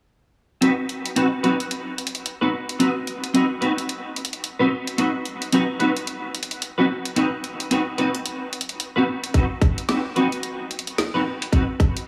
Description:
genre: glitch hop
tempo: 110 BPM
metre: 4/4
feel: swing 60% on 16ths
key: unclear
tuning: A4 = 440 Hz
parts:
  - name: clean electric guitar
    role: stabs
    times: 0.6-11.6 s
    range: C4 to B4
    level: -24 LUFS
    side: equal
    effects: ensemble chorus, sidechain pumping, low-pass filter, dub echo
  - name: drum and bass drum kit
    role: drums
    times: 0.6-12.1 s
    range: hi-hat, snare drum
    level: -30 LUFS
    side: equal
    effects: none
  - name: electronic kick drum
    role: drums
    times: 9.3-11.9 s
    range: none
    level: -20 LUFS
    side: equal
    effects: none
room: moderate lush hall reverb, RT60 1.8 s, digital ambience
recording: heavily compressed radio sound, multiband compression, small room ambience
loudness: -23 LUFS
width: mono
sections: 0.6-12.1 A section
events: none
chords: 0.6 Cdim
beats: | 0.62 1.17 1.71 2.25 | 2.80 3.35 3.89 4.44 | 4.98 5.53 6.07 6.62 | 7.17 7.71 8.26 8.80 | 9.35 9.89 10.44 10.98 | 11.53

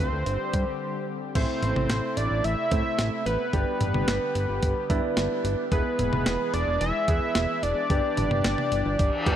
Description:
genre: synth-pop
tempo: 110 BPM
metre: 4/4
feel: straight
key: unclear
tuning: A4 = 440 Hz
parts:
  - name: fat analog lead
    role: melody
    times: 0.0-9.4 s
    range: B4 to E5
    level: -28 LUFS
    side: equal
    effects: chorus, slapback echo
  - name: warm analog pad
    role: sustained chords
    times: 0.0-9.4 s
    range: C3 to G#4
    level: -35 LUFS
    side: left 3 dB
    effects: chorus, tremolo
  - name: fat analog bass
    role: bass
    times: 0.0-9.4 s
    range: E1 to A2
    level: -29 LUFS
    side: equal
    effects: none
  - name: clean 12-bit digital drum machine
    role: drums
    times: 0.3-9.4 s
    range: crash cymbal, hi-hat, kick drum, snare drum, toms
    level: -28 LUFS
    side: equal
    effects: none
  - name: warm baby grand piano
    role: accompaniment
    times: 1.4-9.4 s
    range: A3 to G#4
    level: -31 LUFS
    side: right 3 dB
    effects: none
  - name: reverse cymbal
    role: sound effects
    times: 9.1-9.4 s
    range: none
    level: -30 LUFS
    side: left 2 dB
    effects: none
room: moderate lush hall reverb, RT60 2.6 s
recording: dark, warm production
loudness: -23 LUFS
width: side -10 dB against mid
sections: 0.0-1.4 A section; 1.4-9.4 B section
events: break 0.8-1.4; reverse cymbal 9.1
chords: 0.3 Gsus4; 1.4 Am; 3.5 G; 5.7 E; 7.9 G6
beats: 0.26 0.81 | 1.35 1.90 2.44 2.99 | 3.54 4.08 4.63 5.17 | 5.72 6.26 6.81 7.35 | 7.90 8.45 8.99

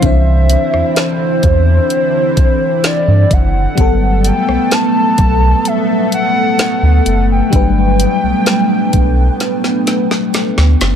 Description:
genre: contemporary R&B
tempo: 64 BPM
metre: 4/4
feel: straight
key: G major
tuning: A4 = 444 Hz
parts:
  - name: hollow clarinet-like synth lead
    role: melody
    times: 0.0-10.1 s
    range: C5 to A5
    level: -17 LUFS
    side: equal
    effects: chorus, dub echo
  - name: FM electric piano with soft pad layer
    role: accompaniment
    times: 0.0-11.0 s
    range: E3 to C5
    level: -17 LUFS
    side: left 1 dB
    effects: chorus, phaser, dub echo
  - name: chorused pulse-width pad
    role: sustained chords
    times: 0.0-11.0 s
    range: D3 to G5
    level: -18 LUFS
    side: left 1 dB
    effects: none
  - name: warm sub bass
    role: bass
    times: 0.0-11.0 s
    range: F#1 to G2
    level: -12 LUFS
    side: equal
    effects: none
  - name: smooth R&B drum kit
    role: drums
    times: 0.0-11.0 s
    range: hi-hat, kick drum, rim click, snare drum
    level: -15 LUFS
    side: equal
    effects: none
room: light reverb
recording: echo-heavy mix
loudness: -10 LUFS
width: side -8 dB against mid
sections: 0.0-11.0 A section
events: drum fill 9.4-11.0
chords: 0.0 Cadd9; 3.8 Gmaj9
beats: | 0.03 0.96 1.90 2.84 | 3.78 4.71 5.65 6.59 | 7.53 8.46 9.40 10.34

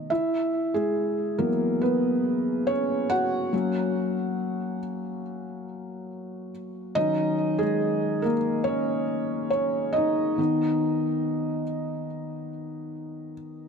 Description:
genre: pop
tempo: 70 BPM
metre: 4/4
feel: straight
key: unclear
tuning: A4 = 440 Hz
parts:
  - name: felt-muted upright piano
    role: solo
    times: 0.0-13.7 s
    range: B2 to F#5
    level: -24 LUFS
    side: equal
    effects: tape echo
room: light reverb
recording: none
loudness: -23 LUFS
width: side -6 dB against mid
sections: 0.1-13.7 A section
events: felt piano solo 0.1-13.7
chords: 0.1 Esus2; 3.5 Gb; 7.0 Ebm7; 10.4 B/D#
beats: | 0.10 0.96 1.81 2.67 | 3.53 4.39 5.24 6.10 | 6.96 7.82 8.67 9.53 | 10.39 11.24 12.10 12.96

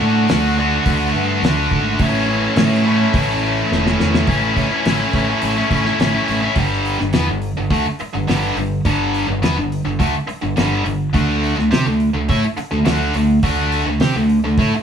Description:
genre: classic rock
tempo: 105 BPM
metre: 4/4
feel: straight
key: unclear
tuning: A4 = 440 Hz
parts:
  - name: tight distorted guitar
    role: riff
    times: 0.0-14.8 s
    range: G2 to G4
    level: -17 LUFS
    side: equal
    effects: distortion
  - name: growling fingered electric bass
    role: bass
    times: 0.0-14.8 s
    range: E1 to C3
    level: -20 LUFS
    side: right 1 dB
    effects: overdrive
  - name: cloth-damped thuddy drum kit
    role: drums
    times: 0.3-14.7 s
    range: hi-hat, kick drum, snare drum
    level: -19 LUFS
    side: equal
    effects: none
room: moderate studio reverb, RT60 0.7 s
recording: band playing live in one room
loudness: -15 LUFS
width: side -8 dB against mid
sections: 0.0-4.3 A section; 4.3-6.6 B section; 6.6-14.8 C section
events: drum fill 3.7-4.3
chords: 0.0 D; 2.0 A; 6.6 G5; 11.1 D5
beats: 0.30 0.87 1.44 | 2.00 2.58 3.14 3.71 | 4.29 4.86 5.43 6.00 | 6.57 7.14 7.71 8.29 | 8.86 9.43 10.00 10.58 | 11.15 11.72 12.29 12.87 | 13.44 14.01 14.58

